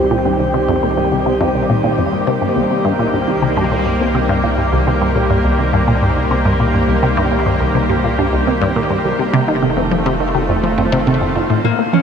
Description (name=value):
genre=ambient, sequencer-driven space music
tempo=104 BPM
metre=4/4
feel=straight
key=unclear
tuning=A4 = 440 Hz
part: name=sweeping resonant pad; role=sustained chords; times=0.0-12.0 s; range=Db3 to C5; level=-17 LUFS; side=equal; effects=chorus
part: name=resonant blip pluck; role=riff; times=0.0-12.0 s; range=C2 to Bb3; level=-16 LUFS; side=equal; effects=phaser, tape echo
part: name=round analog bass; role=bass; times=0.0-12.0 s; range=F1 to C2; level=-23 LUFS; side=equal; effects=none
part: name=concert harp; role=arpeggios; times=11.6-12.0 s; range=Bb3 to Db4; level=-17 LUFS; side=left 9 dB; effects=auto-pan
room=wet shimmer reverb, RT60 6.1 s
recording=none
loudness=-13 LUFS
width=side -7 dB against mid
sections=0.0-11.6 A section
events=filter sweep on synth arpeggio sound 0.0-11.6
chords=0.0 Cm; 9.3 F7